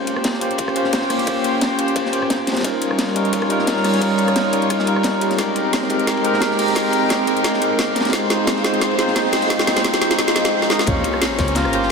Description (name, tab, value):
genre	liquid drum and bass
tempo	175 BPM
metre	4/4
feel	swing 54% on 16ths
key	Bb dorian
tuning	A4 = 440 Hz
part	tine electric piano	accompaniment	0.0-11.9 s	G3 to C5	-20 LUFS	equal	medium stereo tremolo, tape echo
part	warm chamber string section	sustained chords	0.0-11.9 s	G3 to Bb5	-22 LUFS	equal	low-pass filter
part	crunchy breakbeat drum kit	drums	0.1-11.9 s	hi-hat, ride cymbal, snare drum	-25 LUFS	equal	high-pass filter on cymbals, high-pass filter on hats, high-pass filter on snare, high-pass filter on room
part	garage drum kit	drums	0.1-11.8 s	hi-hat, rim click, snare drum	-22 LUFS	equal	none
part	electronic kick drum	drums	0.2-11.5 s	none	-28 LUFS	equal	none
part	breathy tenor saxophone	melody	10.7-11.9 s	Db4 to F4	-23 LUFS	left 1 dB	tape echo
part	dark detuned saw bass	bass	10.9-11.9 s	G1 to Db2	-24 LUFS	equal	none
part	sub drop	sound effects	10.9-11.9 s	none	-34 LUFS	left 1 dB	none
room	wet huge ambient reverb, RT60 3.9 s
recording	dreamy mix soaked in reverb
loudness	-16 LUFS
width	side -5 dB against mid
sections	0.0-10.9 A section; 10.9-11.9 B section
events	build-up 0.0-10.9; drum fill 5.4-10.5, 10.6; drop 10.9-11.9; impact 10.9-11.9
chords	0.0 Bbm69; 2.6 Eb9; 5.4 Abmaj9; 8.1 Fm7; 10.9 Bbm69